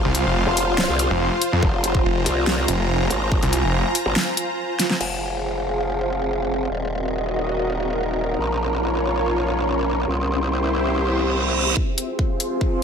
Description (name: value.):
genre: heavy wobble dubstep.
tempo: 142 BPM.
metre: 4/4.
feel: half-time.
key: F minor.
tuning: A4 = 440 Hz.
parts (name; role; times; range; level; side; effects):
supersaw pad; sustained chords; 0.0-12.8 s; E4 to Bb5; -25 LUFS; equal; sidechain pumping, low-pass filter.
growl bass; bass; 0.0-11.7 s; Eb1 to C2; -23 LUFS; equal; chorus, overdrive.
snarling distorted saw bass; bass; 0.0-3.8 s; F1 to F2; -21 LUFS; equal; distortion, overdrive.
granular cloud pad; texture; 0.0-12.8 s; C4 to C6; -27 LUFS; right 1 dB; built-in reverb, sidechain pumping.
dubstep drum kit; drums; 0.1-5.1, 12.0-12.5 s; crash cymbal, hi-hat, snare drum; -23 LUFS; left 1 dB; overdrive, high-pass filter on hats, small room ambience, high-pass filter on snare, high-pass filter on cymbals.
electronic kick drum; drums; 1.6-3.4, 11.8-12.7 s; none; -22 LUFS; equal; small room ambience.
reverse cymbal and riser; sound effects; 11.1-12.8 s; none; -26 LUFS; right 6 dB; none.
room: light reverb.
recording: none.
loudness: -19 LUFS.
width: side -7 dB against mid.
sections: 0.0-5.0 A section; 5.0-11.8 B section; 11.8-12.8 C section.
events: drop 0.0-5.0; drum fill 4.8; filter sweep on supersaw synth 5.0-11.8, 11.8-12.8; reverse cymbal 11.1-11.8; build-up 11.8-12.8; riser 11.8-12.8.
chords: 0.0 F5; 5.0 Fm; 6.7 Ebm; 8.4 Bbm; 10.1 C; 11.8 Fm.